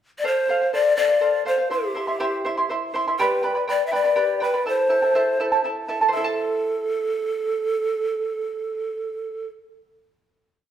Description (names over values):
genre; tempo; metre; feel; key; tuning
andean folk; 82 BPM (dotted quarters); 6/8; straight; A minor; A4 = 440 Hz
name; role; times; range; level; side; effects
breathy mellow large pan pipes; melody; 0.2-9.5 s; G4 to E5; -21 LUFS; left 1 dB; none
charango; accompaniment; 0.2-9.7 s; E4 to C6; -24 LUFS; right 3 dB; none
room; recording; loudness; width
wet large studio reverb, RT60 1.3 s; band playing live in one room; -20 LUFS; side -10 dB against mid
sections
0.0-0.2 pickup bar; 0.2-6.1 A section; 6.1-9.1 final chord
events
none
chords
0.2 F; 1.7 C; 3.2 G; 4.7 Am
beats
| 0.24 0.98 | 1.72 2.45 | 3.19 3.92 | 4.66 5.39 | 6.12 6.86 | 7.59 8.33